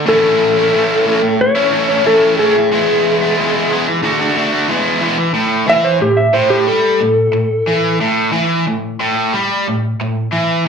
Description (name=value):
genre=rock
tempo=91 BPM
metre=4/4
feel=straight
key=A major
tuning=A4 = 445 Hz
part: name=cranked stack guitar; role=riff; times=0.0-10.6 s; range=A2 to F#4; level=-14 LUFS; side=equal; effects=overdrive, slapback echo
part: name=clean lap steel guitar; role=melody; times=0.1-8.0 s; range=G4 to E5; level=-13 LUFS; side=left 1 dB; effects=slapback echo, analog delay
room=moderate club reverb, RT60 0.7 s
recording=live gig heard through the venue's PA, club reverb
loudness=-12 LUFS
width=side -6 dB against mid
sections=0.0-5.4 A section; 5.4-10.7 B section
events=electric slide guitar solo 5.4-10.7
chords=0.1 A; 2.7 E; 4.0 D; 4.7 E; 5.4 A5